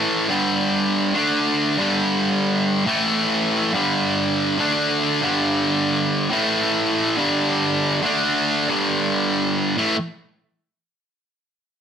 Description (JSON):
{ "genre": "rock", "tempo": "139 BPM", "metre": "4/4", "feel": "straight", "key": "unclear", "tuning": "A4 = 440 Hz", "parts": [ { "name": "distorted electric guitar", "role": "solo", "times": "0.0-10.0 s", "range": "G2 to D4", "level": "-18 LUFS", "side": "equal", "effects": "overdrive" } ], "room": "moderate studio reverb, RT60 0.8 s", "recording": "none", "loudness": "-18 LUFS", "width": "side -8 dB against mid", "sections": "0.0-6.3 A section; 6.3-9.8 B section; 9.8-11.5 C section", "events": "none", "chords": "0.3 G5; 1.1 D5; 1.8 G5; 2.9 A5; 3.7 G5; 4.6 D5; 5.2 G5; 6.3 A5; 7.2 G5; 8.0 D5; 8.7 G5; 9.8 A5" }